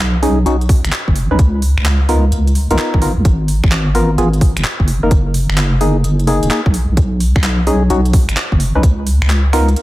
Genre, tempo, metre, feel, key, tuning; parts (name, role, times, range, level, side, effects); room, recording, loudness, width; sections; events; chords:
UK garage, two-step garage; 129 BPM; 4/4; swing 66% on 16ths; A4 = 440 Hz
deep soft wobble bass; bass; 0.0-9.7 s; D#1 to C#2; -14 LUFS; equal; chorus
percussive organ stab; stabs; 0.2-9.7 s; A#3 to B4; -18 LUFS; left 1 dB; chorus, digital delay
garage drum kit; drums; 0.2-9.8 s; finger snaps, handclaps, hi-hat; -22 LUFS; equal
electronic kick drum; drums; 0.7-9.0 s; -13 LUFS; equal
little or no reverb; -12 LUFS; side -17 dB against mid
0.0-9.8 A section
0.0 B69; 1.4 C#13; 3.3 G#m69; 4.9 F#69; 6.7 B69; 8.8 C#13